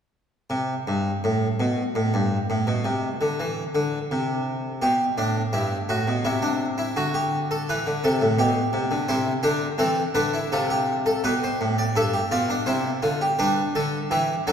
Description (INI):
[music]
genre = classical, baroque-style 3-part fugue for harpsichord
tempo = 84 BPM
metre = 3/4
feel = straight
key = C major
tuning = A4 = 440 Hz
[part]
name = harpsichord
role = solo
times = 0.5-14.5 s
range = G2 to E5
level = -21 LUFS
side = equal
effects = none
[sound]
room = wet church reverb, RT60 3.1 s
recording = recorded in a church or concert hall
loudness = -21 LUFS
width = side -8 dB against mid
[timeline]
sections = 0.5-14.5 A section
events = none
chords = 0.5 N.C.; 4.8 G; 6.3 C; 7.0 D7(no3); 8.4 G/B; 9.1 C; 10.5 F/C; 11.2 G; 12.7 C; 13.4 G